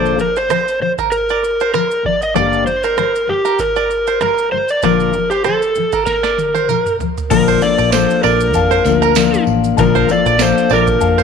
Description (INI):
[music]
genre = acoustic pop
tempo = 97 BPM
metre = 4/4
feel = swing 55% on 16ths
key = Bb major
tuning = A4 = 441 Hz
[part]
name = overdriven slide guitar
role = melody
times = 0.0-11.2 s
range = G4 to Eb5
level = -16 LUFS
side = equal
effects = none
[part]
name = fingerpicked steel-string acoustic guitar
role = accompaniment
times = 0.0-11.2 s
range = G2 to Bb4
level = -17 LUFS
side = left 13 dB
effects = none
[part]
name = bluegrass banjo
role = arpeggios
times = 0.0-11.2 s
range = Bb4 to D5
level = -20 LUFS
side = right 12 dB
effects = none
[part]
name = booming analog drum machine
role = drums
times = 0.1-11.2 s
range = crash cymbal, kick drum, rim click, shaker, snare drum, toms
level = -24 LUFS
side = right 4 dB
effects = none
[part]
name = clear upright piano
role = accompaniment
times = 7.3-11.2 s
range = Bb3 to A5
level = -22 LUFS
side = left 12 dB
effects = none
[part]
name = vintage muted fingered electric bass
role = bass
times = 7.3-11.2 s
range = A1 to F2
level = -19 LUFS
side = right 1 dB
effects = none
[part]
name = tambourine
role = percussion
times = 7.3-10.9 s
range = none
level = -30 LUFS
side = right 18 dB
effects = none
[sound]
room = moderate plate reverb, RT60 1.8 s, small room ambience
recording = 1960s-style stereo with parts hard left and right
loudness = -12 LUFS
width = side -6 dB against mid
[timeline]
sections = 0.0-7.3 A section; 7.3-11.2 B section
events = drum fill 6.1-7.3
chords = 0.0 Bb; 2.4 Gm; 4.8 Bbmaj7